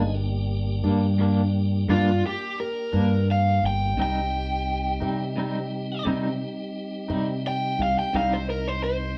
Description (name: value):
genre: blues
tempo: 58 BPM (dotted quarters)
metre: 12/8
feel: straight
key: unclear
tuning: A4 = 440 Hz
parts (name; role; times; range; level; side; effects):
- clean electric guitar; accompaniment; 0.0-8.4 s; G2 to Eb4; -30 LUFS; equal; tremolo
- tonewheel organ; sustained chords; 0.0-9.2 s; G3 to Ab4; -36 LUFS; equal; slow rotary speaker, overdrive
- fingered electric bass; bass; 0.0-9.1 s; G1 to C3; -27 LUFS; equal; none
- overdriven electric guitar; melody; 1.9-9.2 s; F4 to G5; -29 LUFS; equal; none
room: light reverb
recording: band playing live in one room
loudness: -25 LUFS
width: mono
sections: 0.0-9.2 A section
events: overdriven electric guitar solo 0.0-9.2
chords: 0.0 Gm; 4.0 Cm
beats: 0.84 1.89 2.93 | 3.97 5.01 6.05 7.10 | 8.14